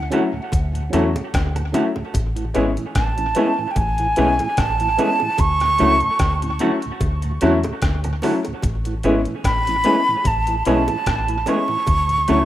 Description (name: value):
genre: lovers rock reggae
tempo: 74 BPM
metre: 4/4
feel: swing 54% on 16ths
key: A major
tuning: A4 = 441 Hz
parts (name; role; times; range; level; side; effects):
- breathy silver concert flute; melody; 0.0-12.4 s; G5 to C#6; -20 LUFS; right 2 dB; tape echo
- deep dub fingered electric bass; bass; 0.0-12.4 s; G#1 to E2; -23 LUFS; equal; none
- dark baby grand piano; accompaniment; 0.1-12.4 s; F#3 to E4; -20 LUFS; left 2 dB; none
- mellow tonewheel organ; accompaniment; 0.1-12.4 s; D2 to C#4; -28 LUFS; right 4 dB; overdrive, stopped rotary speaker
- electric guitar through a small old amp; stabs; 0.1-12.4 s; E3 to A4; -29 LUFS; right 3 dB; spring reverb, tape echo
- detuned 8-bit digital drum machine; drums; 0.1-12.4 s; hi-hat, kick drum, rim click; -23 LUFS; equal; none
- bongos; percussion; 0.1-12.1 s; none; -34 LUFS; right 1 dB; tape echo
room: wet small room reverb, RT60 0.5 s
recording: rough home demo mix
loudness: -17 LUFS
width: side -13 dB against mid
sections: 0.0-12.4 A section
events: none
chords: 0.0 Dmaj7; 2.1 Amaj7; 5.4 Dmaj7; 8.6 Amaj7; 11.9 Dmaj7